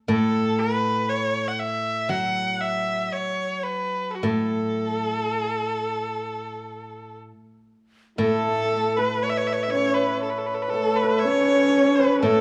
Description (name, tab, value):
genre	chinese traditional, Chinese chamber ensemble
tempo	59 BPM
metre	4/4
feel	straight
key	A gong mode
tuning	A4 = 442 Hz
part	clear erhu	melody	0.1-12.4 s	F#4 to F#5	-28 LUFS	equal	none
part	steel-string zither	accompaniment	0.1-12.4 s	A2 to F#3	-30 LUFS	equal	none
part	breathy low xiao	second line	8.2-12.4 s	A4 to C#5	-27 LUFS	equal	none
part	dark horsehead fiddle	second line	8.2-12.4 s	A3 to C#4	-27 LUFS	equal	none
part	hammered dulcimer	second line	8.2-12.4 s	A4 to E5	-28 LUFS	equal	none
room	moderate recital hall reverb, RT60 1.5 s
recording	dark, warm production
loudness	-23 LUFS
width	mono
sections	0.0-8.2 A section; 8.2-12.4 B section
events	none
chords	none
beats	| 0.08 1.07 2.07 3.08 | 4.08 5.10 6.12 7.16 | 8.19 9.22 10.24 11.25 | 12.25